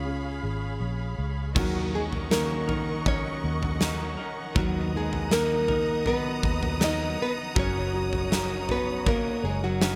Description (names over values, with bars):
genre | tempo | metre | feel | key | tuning
pop ballad | 80 BPM | 4/4 | straight | Eb minor | A4 = 442 Hz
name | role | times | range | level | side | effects
nylon-string guitar | melody | 0.0-10.0 s | Gb3 to D#5 | -32 LUFS | equal | none
felt-muted upright piano | accompaniment | 0.0-10.0 s | Eb3 to Db4 | -37 LUFS | equal | none
rich studio string section | sustained chords | 0.0-10.0 s | Ab4 to D#6 | -37 LUFS | equal | none
vintage muted fingered electric bass | bass | 0.0-10.0 s | Gb1 to Eb2 | -34 LUFS | equal | none
direct-recorded clean electric guitar | arpeggios | 1.6-10.0 s | Eb3 to Bb4 | -39 LUFS | equal | none
huge arena drum kit | drums | 1.6-10.0 s | crash cymbal, kick drum, snare drum, toms | -32 LUFS | equal | none
room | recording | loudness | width
little or no reverb | none | -27 LUFS | mono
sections
0.0-1.6 A section; 1.6-10.0 B section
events
none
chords
0.0 Db7; 1.6 Ebm7; 4.6 Bmaj7/D#; 7.6 Gb6